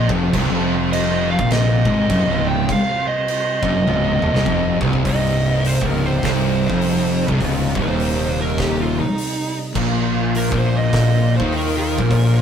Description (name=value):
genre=stoner and doom metal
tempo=102 BPM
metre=4/4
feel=swing 59% on 8ths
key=C phrygian, C minor from 5.1 s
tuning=A4 = 440 Hz
part: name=fuzz lead guitar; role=melody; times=0.0-12.4 s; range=Eb4 to G5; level=-23 LUFS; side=right 3 dB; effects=distortion
part: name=percussive tonewheel organ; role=sustained chords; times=0.0-12.4 s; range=C3 to C5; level=-28 LUFS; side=right 4 dB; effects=slow rotary speaker, overdrive, chorus vibrato
part: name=distorted electric guitar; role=riff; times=0.0-12.4 s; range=C2 to Eb3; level=-25 LUFS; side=right 2 dB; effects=distortion
part: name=thick fuzz guitar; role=riff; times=0.0-12.4 s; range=C2 to Eb3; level=-20 LUFS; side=left 5 dB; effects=distortion
part: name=thick fuzz guitar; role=riff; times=0.0-12.4 s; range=C2 to Eb3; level=-26 LUFS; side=right 6 dB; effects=distortion
part: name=fuzz fingered electric bass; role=bass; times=0.0-12.4 s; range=C1 to Eb2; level=-24 LUFS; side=right 1 dB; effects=overdrive
part: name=oversized low-tuned drum kit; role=drums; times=0.1-12.3 s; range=crash cymbal, hi-hat, kick drum, snare drum, toms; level=-25 LUFS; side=right 1 dB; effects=none
room=light reverb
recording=rough rehearsal-room recording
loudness=-16 LUFS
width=side -8 dB against mid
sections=0.0-5.1 A section; 5.1-12.4 B section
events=drum fill 3.9-5.1; lead electric guitar solo 5.1-12.4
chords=0.3 Cm; 9.8 Bb5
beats=| 0.34 0.93 1.52 2.10 | 2.69 3.28 3.87 4.46 | 5.05 5.64 6.23 6.82 | 7.41 8.00 8.59 9.18 | 9.76 10.35 10.94 11.53 | 12.11